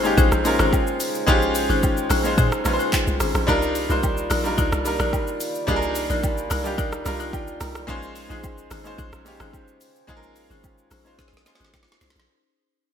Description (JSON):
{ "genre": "amapiano", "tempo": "109 BPM", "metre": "4/4", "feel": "straight", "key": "unclear", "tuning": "A4 = 440 Hz", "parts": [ { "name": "clear baby grand piano", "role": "accompaniment", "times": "0.0-12.3 s", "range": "G3 to Bb5", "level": "-25 LUFS", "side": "right 1 dB", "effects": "none" }, { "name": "mellow French horn section", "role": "sustained chords", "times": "0.0-12.3 s", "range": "Db3 to D5", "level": "-32 LUFS", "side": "right 3 dB", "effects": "sidechain pumping" }, { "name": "marimba with medium mallets", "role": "stabs", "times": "0.0-12.1 s", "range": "Db4 to D5", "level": "-28 LUFS", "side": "left 5 dB", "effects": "digital delay" }, { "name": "tight log drum bass", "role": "bass", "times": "0.0-12.3 s", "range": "Ab1 to Bb2", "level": "-26 LUFS", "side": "equal", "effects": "none" }, { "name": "deep house drum kit", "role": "drums", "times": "0.0-12.3 s", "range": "handclaps, hi-hat, kick drum, rim click, shaker, snare drum", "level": "-25 LUFS", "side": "equal", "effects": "gated reverb" }, { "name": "agogo bells and woodblock", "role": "percussion", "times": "0.2-11.9 s", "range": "none", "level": "-32 LUFS", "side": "left 6 dB", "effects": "none" } ], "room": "light reverb, small room ambience", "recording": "bright 1980s-style digital production", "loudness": "-19 LUFS", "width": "side -8 dB against mid", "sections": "0.0-12.3 A section", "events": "drop 0.0-12.3; fade-out 0.0-12.3; grand piano fill 6.8-7.9; drum fill 11.2-12.3", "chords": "0.0 Bbm11; 3.5 Cm11; 7.9 Bbm11", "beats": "0.18 0.73 | 1.28 1.83 2.38 2.93 | 3.48 4.03 4.58 5.13 | 5.68 6.23 6.78 7.33 | 7.88 8.43 8.98 9.53 | 10.09 10.63 11.19 11.74" }